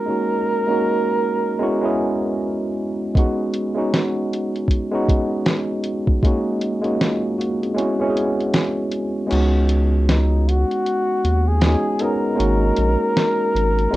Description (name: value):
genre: lo-fi hip hop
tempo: 78 BPM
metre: 4/4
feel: swing 58% on 16ths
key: unclear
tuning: A4 = 440 Hz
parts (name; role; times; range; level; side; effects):
- breathy flugelhorn; melody; 0.0-2.8, 10.1-14.0 s; D#4 to A#4; -22 LUFS; right 1 dB; none
- tine electric piano; accompaniment; 0.0-14.0 s; G#3 to G#4; -21 LUFS; equal; medium stereo tremolo
- lo-fi sampler-style drum kit; drums; 3.2-14.0 s; crash cymbal, hi-hat, kick drum, snare drum; -20 LUFS; equal; vintage 12-bit sampler grit
- saturated sub bass; bass; 9.3-14.0 s; F#1 to D#2; -17 LUFS; equal; none
room: moderate small room reverb, RT60 0.5 s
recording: rough home demo mix, cassette tape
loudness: -17 LUFS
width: side -16 dB against mid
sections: 0.0-9.3 A section; 9.3-14.0 B section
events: kick muted 7.8-9.3, 9.3-14.0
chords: 0.1 G#9sus4; 1.6 F#9sus4; 3.2 C#9sus4; 6.2 G#9sus4; 7.8 F#9sus4; 9.3 C#9sus4; 12.4 G#9sus4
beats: | 0.08 0.84 1.61 2.38 | 3.15 3.92 4.69 5.46 | 6.23 7.00 7.77 8.54 | 9.31 10.08 10.85 11.62 | 12.38 13.15 13.92